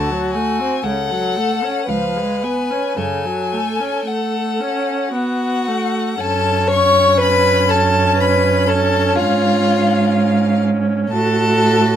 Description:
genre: classical, slow romantic movement for string quartet.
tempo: 54-62 BPM.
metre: 3/4.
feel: rubato.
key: F# minor.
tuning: A4 = 442 Hz.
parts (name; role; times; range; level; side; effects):
clear violin; melody; 0.0-12.0 s; E#5 to C#6; -20 LUFS; left 4 dB; none.
warm violin; second line; 0.0-12.0 s; E#4 to C#5; -20 LUFS; left 2 dB; none.
rich viola; accompaniment; 0.0-12.0 s; C#3 to F#4; -20 LUFS; right 2 dB; none.
warm cello; bass; 0.0-12.0 s; C#2 to A2; -19 LUFS; right 3 dB; none.
room: light reverb.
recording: close, detailed microphones.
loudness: -14 LUFS.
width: side -10 dB against mid.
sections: 0.0-6.2 A section; 6.2-12.0 B section.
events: none.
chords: 0.0 D7; 0.8 F#m/C#; 1.9 C#7; 3.0 F#m; 6.2 F#5; 9.2 C#/G#; 11.1 F#m/A.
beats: 0.83 1.88 | 2.98 4.07 5.14 | 6.21 7.21 8.20 | 9.19 10.16 11.13.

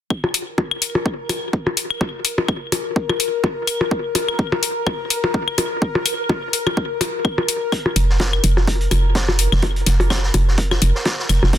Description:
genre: minimal techno.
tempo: 126 BPM.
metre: 4/4.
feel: swing 56% on 16ths.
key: unclear.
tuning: A4 = 444 Hz.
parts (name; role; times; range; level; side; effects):
electronic kick drum; drums; 0.1-11.6 s; none; -21 LUFS; equal; overdrive, high-pass filter on kick.
claves and percussion blips; percussion; 0.1-11.5 s; none; -23 LUFS; left 2 dB; dub echo.
bubbling stepped-filter texture; texture; 0.8-11.6 s; Bb4; -26 LUFS; left 3 dB; chorus, built-in reverb, sidechain pumping.
electronic hi-hat; drums; 0.3-11.4 s; none; -20 LUFS; left 4 dB; overdrive.
vintage drum kit; drums; 7.7-11.6 s; hi-hat, snare drum; -26 LUFS; right 1 dB; sidechain pumping on hats, high-pass filter on hats, high-pass filter on snare, high-pass filter on room.
hollow knocking FM bass; bass; 8.0-11.6 s; F1; -17 LUFS; equal; tube saturation, sidechain pumping.
room: light reverb, small room ambience.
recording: dense, heavily limited modern master.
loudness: -17 LUFS.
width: side -11 dB against mid.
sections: 0.1-11.6 A section.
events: none.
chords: 0.1 Fsus4.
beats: | 0.10 0.58 1.06 1.53 | 2.01 2.48 2.96 3.44 | 3.91 4.39 4.87 5.34 | 5.82 6.29 6.77 7.25 | 7.72 8.20 8.68 9.15 | 9.63 10.10 10.58 11.06 | 11.53.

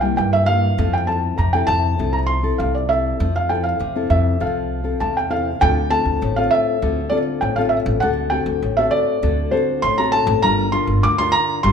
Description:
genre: samba and choro.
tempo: 100 BPM.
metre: 4/4.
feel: straight.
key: F major, D minor from 5.6 s.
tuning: A4 = 440 Hz.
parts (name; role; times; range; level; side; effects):
felt-muted upright piano; melody; 0.0-11.7 s; C5 to D6; -20 LUFS; right 2 dB; none.
nylon-string guitar; accompaniment; 0.0-11.7 s; G2 to Bb4; -22 LUFS; left 6 dB; none.
upright bass; bass; 0.0-11.7 s; G1 to G2; -21 LUFS; equal; none.
room: moderate large studio reverb, RT60 1.2 s.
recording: minimal, uncompressed stereo recording.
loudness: -16 LUFS.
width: side -7 dB against mid.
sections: 0.0-5.6 A section; 5.6-11.7 B section.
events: none.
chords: 0.0 C7; 0.8 Fmaj7; 5.6 Dm7; 8.0 D7; 10.4 Gm7.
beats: 0.18 | 0.79 1.39 1.99 2.60 | 3.20 3.81 4.41 5.01 | 5.62 6.22 6.82 7.42 | 8.03 8.63 9.23 9.83 | 10.44 11.04 11.64.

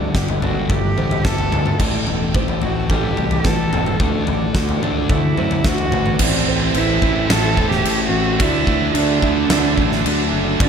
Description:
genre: post-rock.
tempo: 109 BPM.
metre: 4/4.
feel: straight.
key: unclear.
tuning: A4 = 440 Hz.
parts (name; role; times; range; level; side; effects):
chorused pulse-width pad; sustained chords; 0.0-10.7 s; A4 to E6; -33 LUFS; right 5 dB; none.
felt-muted upright piano; arpeggios; 0.0-10.7 s; A4 to E5; -31 LUFS; right 11 dB; tape echo.
semi-hollow electric guitar; arpeggios; 0.0-10.7 s; G2 to G4; -31 LUFS; equal; none.
thick fuzz guitar; riff; 0.0-10.7 s; G2 to D4; -22 LUFS; left 6 dB; distortion.
fuzz fingered electric bass; bass; 0.0-10.7 s; E1 to F#2; -24 LUFS; equal; overdrive.
huge arena drum kit; drums; 0.1-10.7 s; crash cymbal, kick drum, snare drum, toms; -20 LUFS; equal; none.
dark cello; melody; 0.4-10.7 s; C4 to A4; -23 LUFS; right 4 dB; tape echo.
overdriven electric guitar; riff; 6.2-10.7 s; G2 to E4; -23 LUFS; right 14 dB; none.
room: light reverb, studio ambience.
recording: none.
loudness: -15 LUFS.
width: side -7 dB against mid.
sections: 0.0-6.2 A section; 6.2-10.7 B section.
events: build-up 0.0-6.2.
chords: 0.0 Gsus2; 1.8 Am7; 4.0 D; 6.2 Am; 8.4 Dadd9.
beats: 0.15 0.70 1.25 | 1.80 2.35 2.90 3.45 | 4.00 4.55 5.10 5.65 | 6.20 6.75 7.30 7.85 | 8.40 8.95 9.50 10.05 | 10.60.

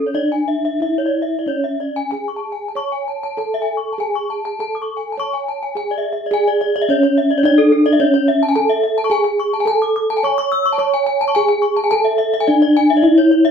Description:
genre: gamelan.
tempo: 91-107 BPM.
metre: 4/4.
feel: straight.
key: C# pelog.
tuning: A4 = 444 Hz.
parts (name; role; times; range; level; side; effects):
gamelan-type bronze metallophone; melody; 0.0-13.5 s; C#4 to C#5; -16 LUFS; right 1 dB; none.
gamelan-type bronze metallophone; arpeggios; 0.1-13.5 s; A4-20c to E6-30c; -19 LUFS; left 3 dB; none.
room: wet studio reverb, RT60 0.6 s.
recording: band playing live in one room.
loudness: -14 LUFS.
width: side -7 dB against mid.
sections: 0.0-6.3 A section; 6.3-13.5 B section.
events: none.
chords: none.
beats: 0.15 0.81 | 1.47 2.12 2.76 3.38 | 3.99 4.59 5.18 5.75 | 6.32 6.88 7.44 8.00 | 8.55 9.11 9.67 10.23 | 10.79 11.35 11.91 12.46 | 13.02.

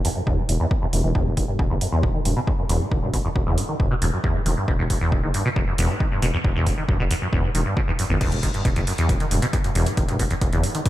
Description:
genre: driving peak-time techno.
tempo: 136 BPM.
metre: 4/4.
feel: straight.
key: E harmonic minor.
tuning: A4 = 438 Hz.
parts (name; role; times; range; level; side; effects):
acid bass, saw; riff; 0.0-10.9 s; E2 to E3; -23 LUFS; equal; lush chorus, cassette tape, sidechain pumping, analog delay.
growling FM bass; bass; 0.0-10.9 s; E1 to G1; -25 LUFS; equal; sidechain pumping.
techno drum kit; drums; 0.0-10.9 s; crash cymbal, hi-hat; -31 LUFS; right 2 dB; sidechain pumping on hats, studio reverb, sidechain pumping on cymbals.
electronic kick drum; drums; 0.3-10.9 s; none; -24 LUFS; equal; studio reverb.
room: light reverb, digital ambience.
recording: none.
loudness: -20 LUFS.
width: side -15 dB against mid.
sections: 0.0-10.9 A section.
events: filter sweep on acid bass 0.0-10.9.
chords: none.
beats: 0.27 0.71 | 1.15 1.59 2.03 2.47 | 2.92 3.36 3.80 4.24 | 4.68 5.12 5.56 6.00 | 6.45 6.89 7.33 7.77 | 8.21 8.65 9.09 9.53 | 9.97 10.41 10.86.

